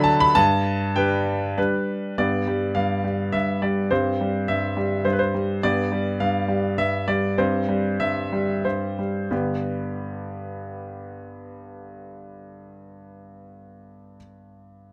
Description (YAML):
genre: classical-period piano sonatina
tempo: 87-107 BPM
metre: 3/4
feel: rubato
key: G major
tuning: A4 = 441 Hz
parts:
  - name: clear baby grand piano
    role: solo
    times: 0.0-14.9 s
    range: G2 to B5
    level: -24 LUFS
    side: equal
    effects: none
room: light reverb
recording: close, detailed microphones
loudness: -23 LUFS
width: mono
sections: 0.0-2.2 A section; 2.2-9.3 B section; 9.3-13.3 C section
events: slowing down 4.8-9.3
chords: 0.3 G; 2.2 G7; 3.9 C/G; 5.6 G7; 7.4 C/G; 9.3 G